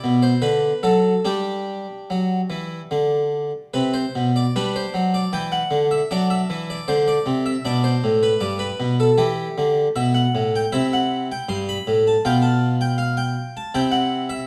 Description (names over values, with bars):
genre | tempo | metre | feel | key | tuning
classical, baroque-style suite movement for harpsichord | 71-82 BPM | 4/4 | rubato | G major | A4 = 440 Hz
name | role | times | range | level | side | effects
harpsichord | solo | 0.0-14.5 s | G2 to C6 | -21 LUFS | equal | none
room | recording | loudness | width
moderate recital hall reverb, RT60 1.2 s | dark, warm production | -21 LUFS | mono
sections
0.0-4.5 A section; 4.5-14.5 B section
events
none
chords
0.4 D; 1.2 G; 4.5 G5; 6.1 D7; 7.7 G; 10.7 C; 12.3 G9/B; 13.8 C